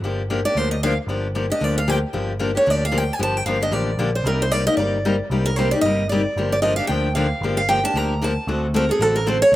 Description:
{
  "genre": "acoustic string swing (jazz manouche)",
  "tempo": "227 BPM",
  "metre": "4/4",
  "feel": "swing 57% on 8ths",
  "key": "G minor",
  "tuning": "A4 = 440 Hz",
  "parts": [
    { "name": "picked steel-string acoustic guitar", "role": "accompaniment", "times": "0.0-9.6 s", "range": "C3 to A4", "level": "-23 LUFS", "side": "left 3 dB", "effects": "slapback echo" },
    { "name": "picked electric bass", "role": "bass", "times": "0.0-9.6 s", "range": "G1 to D2", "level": "-24 LUFS", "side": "equal", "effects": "none" },
    { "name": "picked steel-string acoustic guitar", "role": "melody", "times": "0.5-9.5 s", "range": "Ab4 to Bb5", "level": "-21 LUFS", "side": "right 2 dB", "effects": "none" }
  ],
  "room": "little or no reverb",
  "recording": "recorded outdoors, with no room sound",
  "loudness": "-18 LUFS",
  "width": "side -15 dB against mid",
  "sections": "0.0-9.6 A section",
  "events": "steel-string acoustic guitar solo 0.0-9.6",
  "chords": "0.0 Gm7; 4.3 Cm7; 6.4 Gm7; 8.5 D7"
}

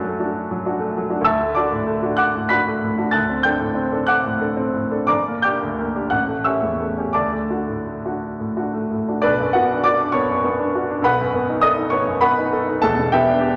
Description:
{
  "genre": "classical, romantic character piece for solo piano",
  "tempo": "55-69 BPM (dotted quarters)",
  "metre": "6/8",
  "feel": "rubato",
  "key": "D major",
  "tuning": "A4 = 440 Hz",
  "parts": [
    { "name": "clear grand piano", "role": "solo", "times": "0.0-13.6 s", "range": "E1 to B6", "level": "-20 LUFS", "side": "equal", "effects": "none" }
  ],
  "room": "wet recital hall reverb, RT60 1.3 s",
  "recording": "none",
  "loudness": "-20 LUFS",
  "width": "mono",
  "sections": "0.0-9.2 A section; 9.2-13.6 B section",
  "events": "none",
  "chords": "0.0 D/F#; 1.3 D; 3.2 D7; 5.1 Gm; 6.1 A7; 7.2 D; 9.2 Bm; 11.0 B7; 12.8 Em7"
}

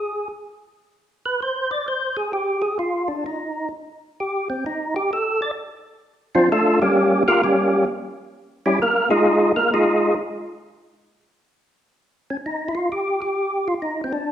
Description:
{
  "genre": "jazz",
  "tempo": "130 BPM",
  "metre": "4/4",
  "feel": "swing 65% on 8ths",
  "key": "unclear",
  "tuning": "A4 = 440 Hz",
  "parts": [
    { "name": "percussive tonewheel organ", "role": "solo", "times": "0.0-14.3 s", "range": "F3 to D5", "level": "-19 LUFS", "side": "equal", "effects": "slow rotary speaker, overdrive, chorus vibrato" }
  ],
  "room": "wet recital hall reverb, RT60 1.4 s",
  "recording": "recorded in a church or concert hall",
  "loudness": "-19 LUFS",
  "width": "side -10 dB against mid",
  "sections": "0.0-12.4 A section; 12.4-14.3 B section",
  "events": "tonewheel organ solo 0.0-12.4",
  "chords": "0.0 N.C.; 5.1 Bbmaj9; 6.9 Gm7b5; 7.9 C#dim/G; 8.8 Fm7; 10.6 N.C."
}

